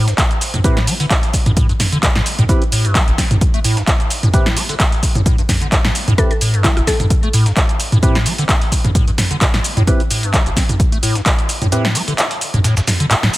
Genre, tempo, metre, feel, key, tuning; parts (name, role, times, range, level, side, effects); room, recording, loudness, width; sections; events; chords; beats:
acid house; 130 BPM; 4/4; swing 55% on 16ths; A minor; A4 = 440 Hz
mallet-like synth pluck; melody; 0.0-0.4, 6.2-7.3 s; E4 to C5; -24 LUFS; left 2 dB; chorus, dub echo
liquid acid bass; riff; 0.0-13.3 s; A1 to C4; -18 LUFS; equal; phaser, tube saturation, analog chorus, sidechain pumping
dusty soul sampler-style drum kit; drums; 0.1-13.4 s; hi-hat, shaker, snare drum; -28 LUFS; right 2 dB
punchy analog drum machine; drums; 0.1-13.4 s; handclaps, hi-hat, shaker, snare drum, toms; -17 LUFS; equal
electronic kick drum; drums; 0.2-11.4 s; -16 LUFS; equal
percussive organ stab; stabs; 0.6-11.9 s; C4 to B4; -24 LUFS; right 2 dB; lush chorus, dub echo
little or no reverb; -13 LUFS; side -17 dB against mid
0.0-13.4 A section
kick drops out 11.7-13.4
0.0 Am7
0.18 | 0.64 1.10 1.57 2.03 | 2.49 2.95 3.41 3.88 | 4.34 4.80 5.26 5.72 | 6.18 6.64 7.11 7.57 | 8.03 8.49 8.95 9.41 | 9.88 10.34 10.80 11.26 | 11.72 12.18 12.64 13.11